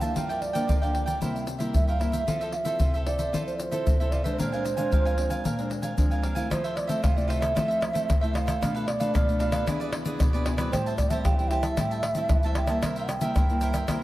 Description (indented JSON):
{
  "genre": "samba and choro",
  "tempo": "114 BPM",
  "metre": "4/4",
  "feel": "straight",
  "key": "unclear",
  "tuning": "A4 = 440 Hz",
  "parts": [
    { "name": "mellow bansuri", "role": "melody", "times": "0.0-14.0 s", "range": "C5 to G5", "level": "-30 LUFS", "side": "right 2 dB", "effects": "tape echo" },
    { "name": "cavaquinho", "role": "accompaniment", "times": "0.0-14.0 s", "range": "D4 to A5", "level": "-34 LUFS", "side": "right 2 dB", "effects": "none" },
    { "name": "nylon-string guitar", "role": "accompaniment", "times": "0.0-14.0 s", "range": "G2 to A4", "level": "-31 LUFS", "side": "left 1 dB", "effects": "none" },
    { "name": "egg shaker, pandeiro, surdo and tamborim", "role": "percussion", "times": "0.0-14.0 s", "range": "none", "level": "-26 LUFS", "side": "equal", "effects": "none" }
  ],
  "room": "moderate plate reverb, RT60 2.6 s",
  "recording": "dreamy mix soaked in reverb",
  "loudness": "-23 LUFS",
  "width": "side -16 dB against mid",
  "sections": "0.0-6.5 A section; 6.5-14.0 B section",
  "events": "none",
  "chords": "0.2 Gm7; 1.2 C7; 2.3 Fmaj7; 4.4 Bb9; 6.5 Fmaj7; 8.6 Bm7b5; 9.7 E7; 10.7 Am7; 12.8 C7",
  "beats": "| 0.16 0.69 1.22 1.75 | 2.28 2.81 3.33 3.86 | 4.39 4.92 5.45 5.98 | 6.50 7.03 7.56 8.09 | 8.61 9.14 9.67 10.20 | 10.72 11.25 11.78 12.31 | 12.83 13.36 13.89"
}